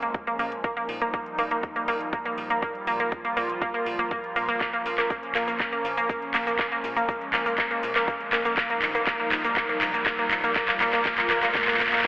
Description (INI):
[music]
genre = progressive house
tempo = 121 BPM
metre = 4/4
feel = straight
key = unclear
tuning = A4 = 439 Hz
[part]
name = airy breathy pad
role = sustained chords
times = 0.0-12.1 s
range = F3 to F4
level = -34 LUFS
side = equal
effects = chorus, sidechain pumping
[part]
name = analog pluck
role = arpeggios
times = 0.0-12.1 s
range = Bb3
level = -26 LUFS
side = equal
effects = chorus, sidechain pumping, digital delay
[part]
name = fat analog bass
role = bass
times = 0.0-12.0 s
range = Bb1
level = -46 LUFS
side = equal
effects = sidechain pumping
[part]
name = house drum kit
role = drums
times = 0.0-12.1 s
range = handclaps, hi-hat, shaker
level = -26 LUFS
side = equal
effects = overdrive, high-pass filter on hats, high-pass filter on snare, high-pass filter on perc, high-pass filter on room
[part]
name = electronic kick drum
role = drums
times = 0.1-12.1 s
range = none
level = -31 LUFS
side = equal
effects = none
[part]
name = riser and swell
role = sound effects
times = 6.6-12.1 s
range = none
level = -34 LUFS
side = equal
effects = none
[sound]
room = wet digital room reverb, RT60 1.0 s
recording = heavily compressed radio sound, multiband compression, telephone sound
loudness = -23 LUFS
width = side -20 dB against mid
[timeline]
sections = 0.0-12.1 A section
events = build-up 0.0-12.1; drum fill 4.6-12.1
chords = 0.0 Bbm; 0.6 Ebadd9/Bb; 4.6 Bbm; 8.6 Ebadd9/Bb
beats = 0.14 | 0.64 1.14 1.63 2.13 | 2.62 3.12 3.62 4.11 | 4.61 5.10 5.60 6.10 | 6.59 7.09 7.58 8.08 | 8.57 9.07 9.57 10.06 | 10.56 11.05 11.55 12.05